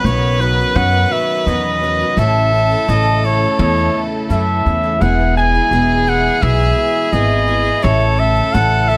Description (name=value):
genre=folk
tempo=85 BPM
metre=4/4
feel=straight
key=E major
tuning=A4 = 438 Hz
part: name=mellow trumpet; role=melody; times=0.0-9.0 s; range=B4 to G#5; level=-19 LUFS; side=equal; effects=none
part: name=rich fiddle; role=second line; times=0.0-9.0 s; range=G#4 to B4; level=-24 LUFS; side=equal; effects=none
part: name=picked twelve-string acoustic guitar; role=accompaniment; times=0.0-9.0 s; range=A2 to A4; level=-28 LUFS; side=equal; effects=lush chorus
part: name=warm upright piano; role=accompaniment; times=0.0-9.0 s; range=A1 to E5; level=-28 LUFS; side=equal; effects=none
part: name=warm chamber string section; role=sustained chords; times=0.0-9.0 s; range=B2 to A4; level=-27 LUFS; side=equal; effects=none
part: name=upright bass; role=bass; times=0.0-9.0 s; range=E1 to F#2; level=-19 LUFS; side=equal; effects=none
room=small room ambience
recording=none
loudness=-15 LUFS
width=mono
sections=0.0-9.0 A section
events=none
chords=0.0 Badd9; 2.2 A; 5.0 E; 7.8 A